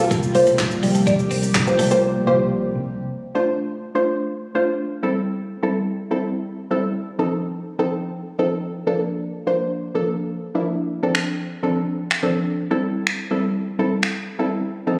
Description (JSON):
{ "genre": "dance-pop", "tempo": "125 BPM", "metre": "4/4", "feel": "straight", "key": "D minor", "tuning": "A4 = 438 Hz", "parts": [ { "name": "soft round pluck", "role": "accompaniment", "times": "0.0-15.0 s", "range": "F3 to C5", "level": "-23 LUFS", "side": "equal", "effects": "chorus, phaser, sidechain pumping" }, { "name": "chorused pulse-width pad", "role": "sustained chords", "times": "0.0-3.0 s", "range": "C3 to G4", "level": "-26 LUFS", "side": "equal", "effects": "sidechain pumping" }, { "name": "vintage muted fingered electric bass", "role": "bass", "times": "0.0-2.9 s", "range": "C2", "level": "-28 LUFS", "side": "equal", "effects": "sidechain pumping" }, { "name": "twelve-string electric guitar", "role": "riff", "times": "0.1-1.9 s", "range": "G3 to D4", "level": "-26 LUFS", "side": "equal", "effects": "analog chorus" }, { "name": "deep house drum kit", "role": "drums", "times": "0.1-2.0, 11.1-14.1 s", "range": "finger snaps, handclaps, hi-hat, kick drum, shaker, snare drum", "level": "-26 LUFS", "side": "equal", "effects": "none" }, { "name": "group handclap", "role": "percussion", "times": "0.6-1.7 s", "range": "none", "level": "barely audible", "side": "none", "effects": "none" } ], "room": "moderate lush hall reverb, RT60 2.2 s", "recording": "recorded on a phone in the room, club reverb, compression", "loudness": "-22 LUFS", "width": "mono", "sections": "0.0-3.0 A section; 3.0-15.0 B section", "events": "break 2.0-3.0", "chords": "0.0 C7sus4; 3.0 Dm7; 4.9 Am7; 6.8 F7; 8.8 Bbmaj7; 10.7 Dm7; 12.6 Am7", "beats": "0.11 0.59 | 1.07 1.55 2.03 2.51 | 2.99 3.47 3.95 4.43 | 4.91 5.39 5.87 6.35 | 6.83 7.31 7.79 8.27 | 8.75 9.23 9.71 10.19 | 10.67 11.15 11.63 12.11 | 12.59 13.07 13.55 14.03 | 14.51 14.99" }